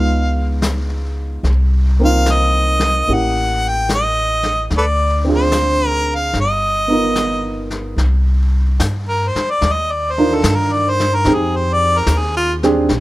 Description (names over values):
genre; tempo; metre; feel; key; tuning
jazz ballad; 73 BPM; 4/4; swing 68% on 8ths; C minor; A4 = 440 Hz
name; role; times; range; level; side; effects
warm harmonica; melody; 0.0-12.5 s; F4 to G5; -17 LUFS; equal; none
warm upright piano; accompaniment; 0.0-12.9 s; Ab3 to A#4; -19 LUFS; right 2 dB; none
upright bass; bass; 0.0-13.0 s; G1 to G2; -18 LUFS; equal; none
vintage brush drum kit; drums; 0.6-13.0 s; brushed snare drum, hi-hat, snare drum; -25 LUFS; left 2 dB; none
room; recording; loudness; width
little or no reverb; none; -14 LUFS; side -17 dB against mid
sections
0.0-8.0 A section; 8.0-13.0 B section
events
harmonica solo 8.0-13.0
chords
0.0 Db9; 1.4 Cm7; 3.1 A7b9; 4.7 Dm7b5; 6.3 G7alt; 8.0 Cm11; 11.3 Fm9